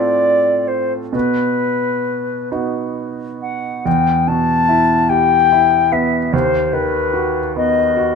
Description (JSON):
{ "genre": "classical, romantic duo for flute and grand piano", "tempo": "42-50 BPM (dotted quarters)", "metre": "6/8", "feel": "rubato", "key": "E minor", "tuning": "A4 = 440 Hz", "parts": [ { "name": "silver concert flute", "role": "melody", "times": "0.0-8.2 s", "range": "B4 to A5", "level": "-15 LUFS", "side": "left 5 dB", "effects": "none" }, { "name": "bright concert grand piano", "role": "accompaniment", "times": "0.0-8.2 s", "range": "D#2 to A4", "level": "-19 LUFS", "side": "right 4 dB", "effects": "none" } ], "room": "light reverb", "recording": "minimal, uncompressed stereo recording", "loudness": "-14 LUFS", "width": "side -6 dB against mid", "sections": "0.0-3.9 A section; 3.9-8.2 B section", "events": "none", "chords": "0.0 F/A; 1.1 B; 3.9 Em; 6.3 B/D#" }